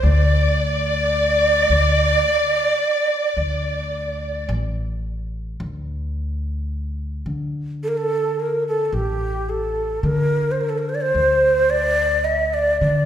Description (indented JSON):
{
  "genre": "Arabic maqam ensemble",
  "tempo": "108 BPM (eighths)",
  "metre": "10/8",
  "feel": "straight",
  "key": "D maqam bayati from 5.6 s",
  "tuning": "A4 = 440 Hz",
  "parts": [
    { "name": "breathy ney", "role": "melody", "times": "0.0-13.1 s", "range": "G4 to E5-47c", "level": "-19 LUFS", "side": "right 1 dB", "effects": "none" },
    { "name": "warm symphonic violin section", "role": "second line", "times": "0.0-4.5 s", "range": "D5", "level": "-24 LUFS", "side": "left 3 dB", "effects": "none" },
    { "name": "upright bass", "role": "bass", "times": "0.0-13.1 s", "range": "A1 to D3", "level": "-23 LUFS", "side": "left 1 dB", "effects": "none" }
  ],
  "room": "wet recital hall reverb, RT60 1.4 s",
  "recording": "recorded in a church or concert hall",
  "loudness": "-18 LUFS",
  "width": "side -10 dB against mid",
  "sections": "0.0-5.6 A section; 5.6-13.1 B section",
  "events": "none",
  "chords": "none"
}